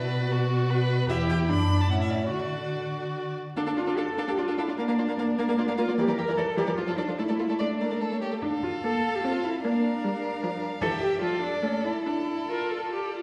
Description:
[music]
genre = quick classical-period movement for string quartet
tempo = 138-155 BPM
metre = 3/4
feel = rubato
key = D major, D minor from 3.6 s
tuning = A4 = 445 Hz
[part]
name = warm violin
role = melody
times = 0.0-13.1 s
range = A4 to B5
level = -39 LUFS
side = equal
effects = none
[part]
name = warm violin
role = second line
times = 0.0-13.1 s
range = D4 to D5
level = -35 LUFS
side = equal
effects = none
[part]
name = warm viola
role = accompaniment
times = 0.0-13.2 s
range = E3 to Bb4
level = -32 LUFS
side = equal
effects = none
[part]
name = warm cello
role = bass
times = 0.0-12.9 s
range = E2 to Bb4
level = -30 LUFS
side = equal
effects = none
[sound]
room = wet recital hall reverb, RT60 1.5 s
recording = recorded in a church or concert hall, vinyl crackle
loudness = -27 LUFS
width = mono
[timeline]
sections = 0.0-3.6 A section; 3.6-13.2 B section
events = none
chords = 0.0 Bm; 1.1 Em; 1.5 D/F#; 1.9 A; 2.3 D; 3.6 Dm; 4.8 Bb; 6.0 Em7b5; 6.8 Dm/F; 7.2 D5/A; 8.0 A; 8.4 Dm; 9.6 Bb; 10.8 Em; 11.2 Dm/F; 11.6 A; 12.1 Dm

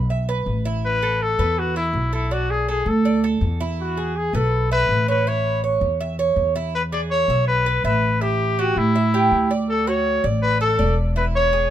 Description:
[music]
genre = latin, Cuban son and guajira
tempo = 163 BPM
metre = 4/4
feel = straight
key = A major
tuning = A4 = 441 Hz
[part]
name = Cuban tres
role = arpeggios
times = 0.0-11.7 s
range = D4 to E5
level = -25 LUFS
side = right 5 dB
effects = none
[part]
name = upright bass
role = bass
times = 0.0-11.7 s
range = E1 to A2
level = -22 LUFS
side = equal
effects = none
[part]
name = warm trumpet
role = melody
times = 0.9-11.7 s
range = E4 to D5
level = -21 LUFS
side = left 2 dB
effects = none
[sound]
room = little or no reverb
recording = minimal, uncompressed stereo recording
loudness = -18 LUFS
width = side -11 dB against mid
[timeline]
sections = 0.0-6.7 A section; 6.7-11.7 B section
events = none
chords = 0.0 E5; 2.3 Bm7; 3.8 E; 5.3 A; 6.7 E; 8.2 A5; 9.7 D; 11.2 E

